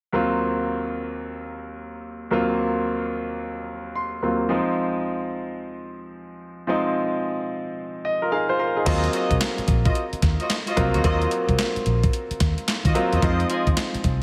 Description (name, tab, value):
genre	R&B, new jack swing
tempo	110 BPM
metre	4/4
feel	swing 64% on 16ths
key	Eb dorian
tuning	A4 = 440 Hz
part	clear concert grand piano	accompaniment	0.1-14.2 s	Eb2 to C6	-26 LUFS	equal	none
part	warm horn section	stabs	8.9-13.7 s	F4 to Eb5	-31 LUFS	equal	digital delay
part	vintage muted fingered electric bass	bass	8.9-14.2 s	Bb1 to Eb3	-26 LUFS	equal	none
part	crisp 8-bit digital drum machine	drums	8.9-14.2 s	crash cymbal, handclaps, hi-hat, kick drum, snare drum	-26 LUFS	equal	overdrive, gated reverb
room	light reverb, digital ambience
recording	none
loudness	-24 LUFS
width	mono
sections	0.1-8.9 A section; 8.9-14.2 B section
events	grand piano fill 3.7-4.5, 7.8-8.9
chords	0.1 Ebm69; 4.5 Fm7; 8.9 Ebm69; 13.2 Fm7